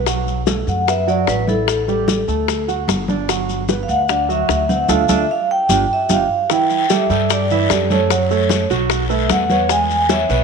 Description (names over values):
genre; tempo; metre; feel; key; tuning
Afro-Cuban jazz; 149 BPM; 4/4; straight; G major; A4 = 436 Hz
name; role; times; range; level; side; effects
warm grand piano; accompaniment; 0.0-10.4 s; E3 to G#5; -20 LUFS; right 12 dB; none
upright bass; bass; 0.0-10.4 s; G1 to G2; -22 LUFS; left 1 dB; none
bongos; percussion; 0.1-10.3 s; none; -24 LUFS; left 13 dB; none
congas; percussion; 0.1-10.4 s; none; -24 LUFS; left 1 dB; none
maracas; percussion; 0.1-10.4 s; none; -28 LUFS; left 15 dB; none
vibraphone with medium mallets; melody; 0.7-10.4 s; A4 to G#5; -18 LUFS; left 1 dB; none
guiro; percussion; 6.5-10.4 s; none; -27 LUFS; left 15 dB; none
room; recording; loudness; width
moderate plate reverb, RT60 2.9 s; 1960s-style stereo with parts hard left and right; -15 LUFS; side -5 dB against mid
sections
0.0-6.5 A section; 6.5-10.4 B section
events
band accent 4.9-6.5; drum fill 5.9-6.5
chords
0.0 B5; 1.7 A5; 2.5 D; 3.3 Gmaj7; 4.9 Dm; 5.7 G5; 6.5 Em11; 8.1 F#m; 8.9 B5; 9.7 E6